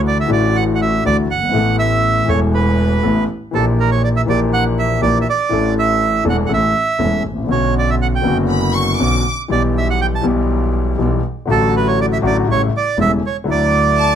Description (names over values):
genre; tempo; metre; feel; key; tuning
tango; 121 BPM; 4/4; rubato; D major; A4 = 437 Hz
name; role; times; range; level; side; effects
warm concert grand piano; accompaniment; 0.0-14.2 s; E1 to A4; -17 LUFS; left 3 dB; none
bright double bass; bass; 0.0-14.2 s; E1 to D2; -20 LUFS; right 2 dB; none
bandoneon; melody; 0.1-14.2 s; A4 to A5; -18 LUFS; right 6 dB; none
clear studio violin section; second line; 8.5-9.3, 14.0-14.2 s; A5 to D6; -20 LUFS; left 2 dB; none
room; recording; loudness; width
light reverb; close, detailed microphones; -14 LUFS; side -9 dB against mid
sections
0.0-14.2 A section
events
none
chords
0.0 Dadd9; 1.5 Asus2; 3.5 Gm6/Bb; 5.5 Asus4; 6.5 A; 7.5 Bmadd9; 9.5 Em/B; 11.5 D/A; 12.5 A7; 13.5 Dadd9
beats
0.05 0.55 1.04 | 1.54 2.04 2.53 3.03 | 3.52 4.02 4.52 5.02 | 5.51 6.01 6.51 7.01 | 7.51 8.01 8.51 9.00 | 9.50 10.00 10.49 10.99 | 11.48 11.98 12.48 12.98 | 13.47 13.97